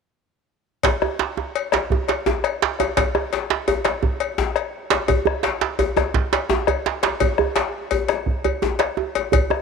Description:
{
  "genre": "west african traditional, West African drum ensemble",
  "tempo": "113 BPM (dotted quarters)",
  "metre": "12/8",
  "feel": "straight",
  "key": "none",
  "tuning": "none",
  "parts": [
    { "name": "bombo", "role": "percussion", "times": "0.8-9.6 s", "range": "none", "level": "-24 LUFS", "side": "left 2 dB", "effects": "none" },
    { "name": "cowbell", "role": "percussion", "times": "0.8-9.5 s", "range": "none", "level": "-26 LUFS", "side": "left 11 dB", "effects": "none" },
    { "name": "djembe", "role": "percussion", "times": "0.8-9.6 s", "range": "none", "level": "-26 LUFS", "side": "left 5 dB", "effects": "none" },
    { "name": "djembe", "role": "percussion", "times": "0.8-9.6 s", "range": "none", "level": "-22 LUFS", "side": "right 9 dB", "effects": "none" }
  ],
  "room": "light reverb, small room ambience",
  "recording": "1960s-style stereo with parts hard left and right",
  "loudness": "-19 LUFS",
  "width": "side -5 dB against mid",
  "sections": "0.8-9.6 A section",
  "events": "none",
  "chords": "none",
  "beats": "| 0.84 1.38 1.91 2.44 | 2.97 3.50 4.03 4.56 | 5.09 5.62 6.15 6.68 | 7.21 7.74 8.27 8.80 | 9.33"
}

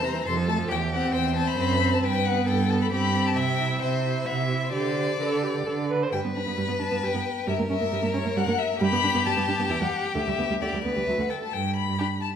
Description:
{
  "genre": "quick classical-period movement for string quartet",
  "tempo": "134 BPM",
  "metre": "3/4",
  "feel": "straight",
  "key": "G major",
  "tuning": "A4 = 438 Hz",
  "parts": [
    { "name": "warm violin", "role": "melody", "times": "0.0-12.3 s", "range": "B4 to C6", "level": "-29 LUFS", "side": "left 8 dB", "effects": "none" },
    { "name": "clear violin", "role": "second line", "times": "0.0-12.1 s", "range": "G4 to E5", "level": "-30 LUFS", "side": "left 2 dB", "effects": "none" },
    { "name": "warm viola", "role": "accompaniment", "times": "0.0-12.1 s", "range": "C3 to C5", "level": "-29 LUFS", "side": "right 2 dB", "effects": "none" },
    { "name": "warm cello", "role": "bass", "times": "0.3-11.9 s", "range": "D2 to D3", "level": "-28 LUFS", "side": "right 4 dB", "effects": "none" }
  ],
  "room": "wet recital hall reverb, RT60 1.7 s",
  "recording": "minimal, uncompressed stereo recording",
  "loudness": "-23 LUFS",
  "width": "side -8 dB against mid",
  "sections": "0.0-6.1 A section; 6.1-12.4 B section",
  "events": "none",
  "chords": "0.3 F; 0.7 C/E; 1.6 Am69/F#; 2.0 G; 2.9 Gadd11; 3.4 C; 4.7 G/D; 5.7 D5; 6.1 G; 7.5 Gm6; 8.8 G; 9.7 Emadd9; 10.2 G/D; 11.1 D5; 11.5 G",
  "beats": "0.25 | 0.70 1.13 1.58 | 2.03 2.47 2.91 | 3.36 3.81 4.26 | 4.73 5.19 5.65 | 6.12 6.58 7.03 | 7.48 7.92 8.37 | 8.81 9.26 9.71 | 10.16 10.62 11.08 | 11.54 11.99"
}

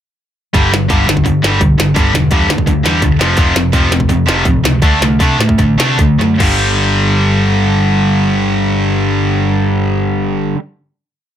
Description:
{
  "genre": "punk rock",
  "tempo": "143-170 BPM",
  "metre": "4/4",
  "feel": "straight",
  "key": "unclear",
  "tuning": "A4 = 439 Hz",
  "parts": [
    { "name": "overdriven electric guitar", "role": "riff", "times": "0.5-10.6 s", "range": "F2 to D4", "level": "-14 LUFS", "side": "left 4 dB", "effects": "none" },
    { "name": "tight distorted guitar", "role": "riff", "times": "0.5-10.6 s", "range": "F2 to D4", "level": "-17 LUFS", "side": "right 11 dB", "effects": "distortion" },
    { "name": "overdriven picked electric bass", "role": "bass", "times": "0.5-10.5 s", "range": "E1 to C3", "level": "-17 LUFS", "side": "equal", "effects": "none" },
    { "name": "glitchy drum kit", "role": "drums", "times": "0.5-6.5 s", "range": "crash cymbal, hi-hat, kick drum, snare drum", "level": "-15 LUFS", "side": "equal", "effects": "overdrive" }
  ],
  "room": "light reverb",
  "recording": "none",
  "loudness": "-10 LUFS",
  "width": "side -10 dB against mid",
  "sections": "0.5-6.4 verse; 6.4-9.8 final chord",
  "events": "slowing down 3.4-6.4; drum fill 6.2",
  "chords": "0.5 G5; 3.2 F5; 4.8 D5; 6.4 G5",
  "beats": "| 0.54 0.90 1.25 1.61 | 1.96 2.32 2.67 3.02 | 3.38 3.73 4.09 4.46 | 4.82 5.20 5.59 5.99 | 6.40 6.82 7.24 7.66 | 8.07 8.49 8.91 9.34"
}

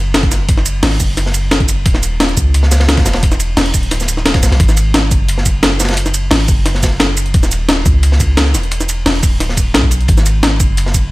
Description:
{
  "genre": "liquid drum and bass",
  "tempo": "175 BPM",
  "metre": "4/4",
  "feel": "straight",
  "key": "unclear",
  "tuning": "A4 = 441 Hz",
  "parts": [
    { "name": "long sustained 808-style bass", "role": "bass", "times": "0.0-11.1 s", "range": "D1 to C#2", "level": "-14 LUFS", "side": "equal", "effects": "none" },
    { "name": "breakbeat sampler-style drum kit", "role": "drums", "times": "0.1-11.0 s", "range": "hi-hat, shaker, snare drum", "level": "-16 LUFS", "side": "equal", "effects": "studio reverb" },
    { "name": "crunchy breakbeat drum kit", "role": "drums", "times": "0.1-11.0 s", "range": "hi-hat, ride cymbal, snare drum", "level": "-21 LUFS", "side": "equal", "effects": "high-pass filter on cymbals, studio reverb, high-pass filter on hats, high-pass filter on snare, high-pass filter on room" },
    { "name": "electronic kick drum", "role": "drums", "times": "0.2-11.0 s", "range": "none", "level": "-14 LUFS", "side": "equal", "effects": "studio reverb" }
  ],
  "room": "studio reverb",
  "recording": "none",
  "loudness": "-10 LUFS",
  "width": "side -20 dB against mid",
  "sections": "0.0-4.6 A section; 4.6-11.1 A section",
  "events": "drop 0.0-4.6, 4.6-11.1",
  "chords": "none",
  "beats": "0.14 | 0.49 0.83 1.17 1.52 | 1.86 2.20 2.54 2.89 | 3.23 3.57 3.92 4.26 | 4.60 4.94 5.29 5.63 | 5.97 6.32 6.66 7.00 | 7.34 7.69 8.03 8.37 | 8.72 9.06 9.40 9.74 | 10.09 10.43 10.77"
}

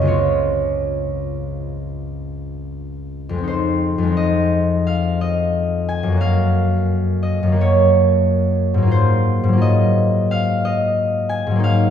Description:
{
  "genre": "classical, solo harp piece",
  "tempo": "68-92 BPM",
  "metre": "4/4",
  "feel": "rubato",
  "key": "Db major",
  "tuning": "A4 = 440 Hz",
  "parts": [
    { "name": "concert harp", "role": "solo", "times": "0.0-11.9 s", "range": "Db2 to Ab5", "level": "-16 LUFS", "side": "left 1 dB", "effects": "none" }
  ],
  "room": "wet recital hall reverb, RT60 1.6 s",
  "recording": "recorded in a church or concert hall",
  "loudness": "-16 LUFS",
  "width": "side -9 dB against mid",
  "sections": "0.0-3.5 A section; 3.5-11.9 B section",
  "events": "none",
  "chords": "0.1 Dbmaj7; 3.5 Fm7; 6.2 Gbmaj7; 8.9 Ab13",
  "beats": "| 0.07 0.93 1.81 2.67 | 3.46 4.15 4.84 5.53 | 6.20 6.88 7.58 8.26 | 8.92 9.62 10.32 10.99 | 11.65"
}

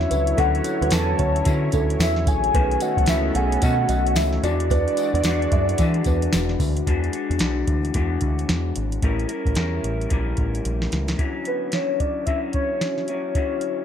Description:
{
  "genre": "indie pop, bedroom pop",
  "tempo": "111 BPM",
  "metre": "4/4",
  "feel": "swing 60% on 16ths",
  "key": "unclear",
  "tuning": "A4 = 441 Hz",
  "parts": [
    { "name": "soft octave-layered synth lead", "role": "melody", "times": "0.0-6.3, 11.5-13.8 s", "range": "B4 to A5", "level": "-24 LUFS", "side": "left 1 dB", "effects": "phaser, wide subtle chorus, tape echo" },
    { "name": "electric guitar through a small old amp", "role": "accompaniment", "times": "0.0-13.8 s", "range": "A2 to Bb4", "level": "-27 LUFS", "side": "left 4 dB", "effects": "lush chorus, warbly pitch drift" },
    { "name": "warm analog pad", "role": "sustained chords", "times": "0.0-6.8 s", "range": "D3 to D5", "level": "-32 LUFS", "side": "equal", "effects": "chorus" },
    { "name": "deep dub picked electric bass", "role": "bass", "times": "0.0-11.1 s", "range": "E1 to E3", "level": "-24 LUFS", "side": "equal", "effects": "none" },
    { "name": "soft vintage rhythm box", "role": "drums", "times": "0.0-13.8 s", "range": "hi-hat, kick drum, snare drum", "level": "-24 LUFS", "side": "equal", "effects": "none" },
    { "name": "kalimba", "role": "second line", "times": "0.1-6.3 s", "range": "A4 to F#5", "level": "-29 LUFS", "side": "right 7 dB", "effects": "wide subtle chorus, tape echo" },
    { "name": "tambourine", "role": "percussion", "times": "0.1-6.7 s", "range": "none", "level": "-39 LUFS", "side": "left 7 dB", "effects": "none" }
  ],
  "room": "digital ambience",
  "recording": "none",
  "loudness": "-19 LUFS",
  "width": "side -9 dB against mid",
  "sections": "0.0-6.9 A section; 6.9-11.2 B section; 11.2-13.8 C section",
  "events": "drum fill 10.6-11.2",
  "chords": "0.0 Dmaj9; 2.5 B9; 4.4 E9; 9.0 A7b9; 11.2 Dmaj9",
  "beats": "| 0.38 0.92 1.46 2.00 | 2.54 3.08 3.62 4.16 | 4.70 5.24 5.78 6.32 | 6.86 7.40 7.94 8.48 | 9.02 9.56 10.11 10.65 | 11.19 11.73 12.27 12.81 | 13.35"
}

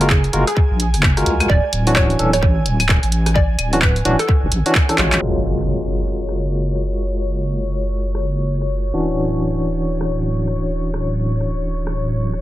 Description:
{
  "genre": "UK garage, two-step garage",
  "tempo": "129 BPM",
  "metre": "4/4",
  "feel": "swing 61% on 16ths",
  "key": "unclear",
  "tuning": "A4 = 440 Hz",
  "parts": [
    { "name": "airy breathy pad", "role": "sustained chords", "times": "0.0-12.4 s", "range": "C#5 to G#5", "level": "-29 LUFS", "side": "left 1 dB", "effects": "chorus, vintage 12-bit sampler grit, sidechain pumping" },
    { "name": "barky tine electric piano", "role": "stabs", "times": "0.0-12.4 s", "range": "E3 to C#5", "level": "-22 LUFS", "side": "equal", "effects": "fast tremolo, low-pass filter, analog delay" },
    { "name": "deep soft wobble bass", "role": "bass", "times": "0.0-12.4 s", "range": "D1 to C#2", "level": "-20 LUFS", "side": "equal", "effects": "chorus" },
    { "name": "punchy analog drum machine", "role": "drums", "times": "0.0-11.9 s", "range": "claves, handclaps, hi-hat, rim click", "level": "-21 LUFS", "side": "equal", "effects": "analog delay" },
    { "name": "hollow square pluck", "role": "melody", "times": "0.1-5.1 s", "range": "G#4 to D5", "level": "-24 LUFS", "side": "right 1 dB", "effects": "chorus, analog delay" },
    { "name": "electronic kick drum", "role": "drums", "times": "0.1-4.9 s", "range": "none", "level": "-16 LUFS", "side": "equal", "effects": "none" },
    { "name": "impact", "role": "sound effects", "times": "5.2-7.1 s", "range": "none", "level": "-26 LUFS", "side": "equal", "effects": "none" }
  ],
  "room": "light reverb",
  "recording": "echo-heavy mix, low-pass filter",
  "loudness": "-16 LUFS",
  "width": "side -15 dB against mid",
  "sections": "0.0-5.2 A section; 5.2-12.4 B section",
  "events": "drum fill 5.0; band accent 5.1; impact 5.2-7.1; filter sweep on tine electric piano 5.2-12.4; filter sweep 5.2-12.4",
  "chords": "0.0 F#maj9; 1.5 Dmaj9; 5.2 F#maj9; 8.9 Dmaj9",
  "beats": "0.10 0.56 1.03 | 1.50 1.96 2.43 2.89 | 3.36 3.82 4.29 4.75 | 5.22 5.68 6.15 6.61 | 7.08 7.54 8.01 8.47 | 8.94 9.40 9.87 10.33 | 10.80 11.26 11.73 12.19"
}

